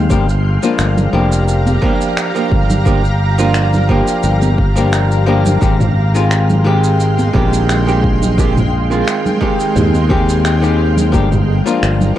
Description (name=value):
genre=sunset chillout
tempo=87 BPM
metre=4/4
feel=swing 53% on 16ths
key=unclear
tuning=A4 = 441 Hz
part: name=archtop guitar, miked and amplified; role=accompaniment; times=0.0-12.2 s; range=Eb3 to G4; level=-17 LUFS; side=moving between left 5 dB and right 5 dB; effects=auto-pan, tape echo
part: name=shimmering ambient pad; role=sustained chords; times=0.0-12.2 s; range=Ab3 to C6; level=-22 LUFS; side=equal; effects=chorus, built-in reverb
part: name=modern bright fingered electric bass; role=bass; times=0.0-12.1 s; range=F1 to Eb2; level=-14 LUFS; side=equal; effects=none
part: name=wind-like tuned noise texture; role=texture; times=0.0-12.2 s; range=F5 to F6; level=-29 LUFS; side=left 2 dB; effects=built-in reverb
part: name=deep house drum kit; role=drums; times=0.1-12.1 s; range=finger snaps, shaker, toms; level=-22 LUFS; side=equal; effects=none
part: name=electronic kick drum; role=drums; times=0.1-11.3 s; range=none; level=-17 LUFS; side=equal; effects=none
part: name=congas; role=percussion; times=1.0-12.1 s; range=none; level=-22 LUFS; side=right 1 dB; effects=none
room=light reverb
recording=worn, warbling old tape, cassette tape, warbly pitch drift, faint mains hum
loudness=-11 LUFS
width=side -12 dB against mid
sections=0.0-12.2 A section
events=none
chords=0.1 Gm7; 5.6 Abmaj7; 11.1 Gm7